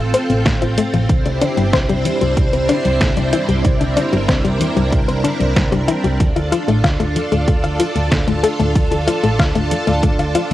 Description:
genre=synthwave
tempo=94 BPM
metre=4/4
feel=straight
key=unclear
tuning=A4 = 440 Hz
part: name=string machine, full ensemble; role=sustained chords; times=0.0-10.5 s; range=G3 to C5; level=-20 LUFS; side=right 1 dB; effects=ensemble chorus, sidechain pumping, plate reverb
part: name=analog pluck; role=arpeggios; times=0.0-10.5 s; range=E3 to F5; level=-19 LUFS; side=left 4 dB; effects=chorus, tape echo, plate reverb
part: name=hollow-body short-scale picked electric bass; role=bass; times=0.0-10.5 s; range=G1 to D2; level=-20 LUFS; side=right 1 dB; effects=sidechain pumping
part: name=detuned 8-bit digital drum machine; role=drums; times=0.1-10.5 s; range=hi-hat, snare drum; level=-22 LUFS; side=right 1 dB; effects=overdrive, cassette tape
part: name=electronic kick drum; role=drums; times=0.5-10.2 s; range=none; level=-18 LUFS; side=right 1 dB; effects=cassette tape
room=moderate booth ambience, RT60 0.2 s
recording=home recording on cassette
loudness=-14 LUFS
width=side -14 dB against mid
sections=0.0-10.5 A section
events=none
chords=0.0 F/A; 1.1 Cadd9; 6.2 Dm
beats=0.46 | 1.09 1.73 2.37 3.01 | 3.65 4.29 4.92 5.56 | 6.20 6.84 7.48 8.12 | 8.75 9.39 10.03

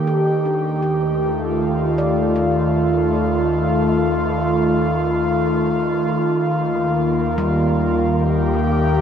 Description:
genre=ambient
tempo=78 BPM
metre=4/4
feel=straight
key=unclear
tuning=A4 = 437 Hz
part: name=airy breathy pad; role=sustained chords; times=0.0-9.0 s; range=Eb3 to G4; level=-17 LUFS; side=equal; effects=chorus
part: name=handpan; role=arpeggios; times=0.0-9.0 s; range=G3 to D5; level=-29 LUFS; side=equal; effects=diffuse ambient delay
part: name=warm sub bass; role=bass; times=0.1-9.0 s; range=Eb2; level=-27 LUFS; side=equal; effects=none
room=wet huge ambient reverb, RT60 8.8 s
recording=dreamy mix soaked in reverb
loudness=-16 LUFS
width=side -8 dB against mid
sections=0.0-9.0 A section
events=fade-in on handpan 0.0-9.0; fade-in on sub bass 0.0-9.0; filter sweep on analog synth pad 0.0-9.0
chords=0.1 Dm/Eb; 6.2 Eb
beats=| 0.06 0.83 1.60 2.37 | 3.14 3.91 4.68 5.45 | 6.22 6.99 7.75 8.52

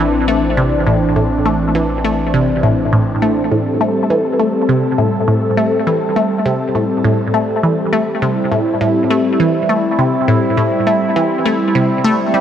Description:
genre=ambient, sequencer-driven space music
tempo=102 BPM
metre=4/4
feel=straight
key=A minor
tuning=A4 = 439 Hz
part: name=phased analog pad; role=sustained chords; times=0.0-12.4 s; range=E3 to A4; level=-16 LUFS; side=equal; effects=phaser, chorus, shimmer reverb
part: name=resonant blip pluck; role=riff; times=0.0-12.4 s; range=A2 to A3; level=-16 LUFS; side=equal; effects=phaser, analog delay, shimmer reverb
part: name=warm sub bass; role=bass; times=0.0-3.5 s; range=A1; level=-23 LUFS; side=equal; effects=none
room=moderate plate reverb, RT60 2.4 s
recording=cassette tape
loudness=-13 LUFS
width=side -9 dB against mid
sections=0.0-3.5 A section; 3.5-12.4 B section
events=none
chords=0.0 Am7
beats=0.57 | 1.16 1.75 2.34 2.93 | 3.52 4.10 4.69 5.28 | 5.87 6.46 7.04 7.63 | 8.22 8.81 9.40 9.99 | 10.57 11.16 11.75 12.34

